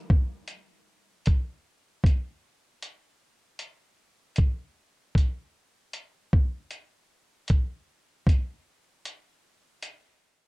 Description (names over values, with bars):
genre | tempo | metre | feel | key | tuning
hip hop | 77 BPM | 4/4 | swing 57% on 16ths | none | none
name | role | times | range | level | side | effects
dusty soul sampler-style drum kit | drums | 0.1-10.0 s | hi-hat, kick drum | -22 LUFS | equal | vintage 12-bit sampler grit
room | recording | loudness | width
little or no reverb | dark, warm production | -24 LUFS | side -28 dB against mid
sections
0.1-10.5 A section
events
none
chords
none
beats
| 0.10 0.88 1.66 2.44 | 3.22 4.00 4.78 5.56 | 6.34 7.12 7.89 8.67 | 9.45